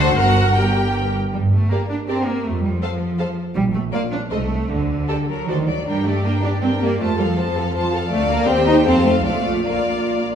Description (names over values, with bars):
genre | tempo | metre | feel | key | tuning
quick classical-period movement for string orchestra | 149-165 BPM | 3/4 | rubato | G minor | A4 = 440 Hz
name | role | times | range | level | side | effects
warm symphonic violin section | melody | 0.0-10.2 s | D5 to A5 | -26 LUFS | left 1 dB | none
rich studio violin section | second line | 0.0-10.2 s | F#4 to D5 | -24 LUFS | left 4 dB | none
clear chamber viola section | accompaniment | 0.0-10.2 s | D4 to C5 | -26 LUFS | right 1 dB | none
clear symphonic double bass section | bass | 0.0-10.2 s | G1 to G2 | -23 LUFS | right 2 dB | none
rich symphonic cello section | bass | 0.0-10.3 s | G2 to Eb4 | -21 LUFS | right 1 dB | none
room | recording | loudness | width
wet recital hall reverb, RT60 1.6 s | recorded in a church or concert hall | -17 LUFS | side -8 dB against mid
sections
0.0-1.3 A section; 1.3-10.3 A section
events
none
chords
0.2 Gm; 2.5 F; 3.6 N.C.; 4.3 Adim/C; 4.7 Gm/D (rootless); 5.5 D; 5.9 Gm; 7.0 F; 8.1 Dm; 8.5 Cm/Eb; 8.9 F; 9.3 Bb